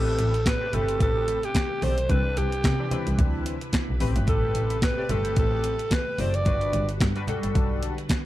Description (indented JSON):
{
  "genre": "early-eighties boogie funk",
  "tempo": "110 BPM",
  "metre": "4/4",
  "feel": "swing 56% on 16ths",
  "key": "A dorian",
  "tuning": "A4 = 443 Hz",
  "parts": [
    { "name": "breathy alto saxophone", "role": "melody", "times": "0.0-6.9 s", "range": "G4 to D5", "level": "-27 LUFS", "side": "right 1 dB", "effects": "slapback echo" },
    { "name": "chorused polysynth", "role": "accompaniment", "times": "0.0-7.9 s", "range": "E3 to D5", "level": "-32 LUFS", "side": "left 3 dB", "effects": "none" },
    { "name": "string machine, full ensemble", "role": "sustained chords", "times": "0.0-8.3 s", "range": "C3 to B4", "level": "-36 LUFS", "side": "right 1 dB", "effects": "ensemble chorus" },
    { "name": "rich double bass", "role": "bass", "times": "0.0-7.8 s", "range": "F#1 to C3", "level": "-26 LUFS", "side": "equal", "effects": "none" },
    { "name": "clean 12-bit digital drum machine", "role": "drums", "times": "0.2-8.2 s", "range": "handclaps, hi-hat, kick drum, snare drum", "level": "-26 LUFS", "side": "equal", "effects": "overdrive" },
    { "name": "congas", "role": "percussion", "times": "0.2-8.2 s", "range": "none", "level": "-35 LUFS", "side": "right 1 dB", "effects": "none" }
  ],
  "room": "light reverb",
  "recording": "dark, warm production",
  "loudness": "-22 LUFS",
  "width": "side -15 dB against mid",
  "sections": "0.0-8.3 A section",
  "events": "none",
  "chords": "0.0 Am9; 2.1 Cmaj9; 4.0 Am9; 6.5 Gmaj7"
}